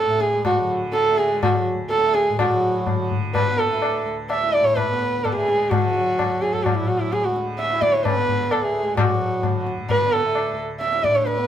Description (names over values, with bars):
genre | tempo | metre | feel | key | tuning
indian classical, Hindustani | 128 BPM | 7/4 | straight | D raga yaman | A4 = 440 Hz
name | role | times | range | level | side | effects
dark sarangi | melody | 0.0-11.5 s | E4 to E5 | -20 LUFS | right 1 dB | none
tanpura | drone | 0.0-11.5 s | D2 to D3 | -31 LUFS | left 1 dB | none
clear trombone | second line | 0.1-11.5 s | E3 to E4 | -29 LUFS | right 2 dB | none
tabla | percussion | 0.2-11.5 s | none | -25 LUFS | left 4 dB | none
room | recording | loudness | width
light reverb | band playing live in one room | -18 LUFS | side -10 dB against mid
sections
0.0-2.4 A section; 2.4-11.5 B section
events
speeding up 0.0-11.5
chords
none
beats
0.45 0.94 1.42 1.91 | 2.39 2.87 3.34 3.82 4.30 4.77 5.24 | 5.71 6.19 6.65 7.12 7.59 8.05 8.52 | 8.98 9.44 9.90 10.36 10.81 11.27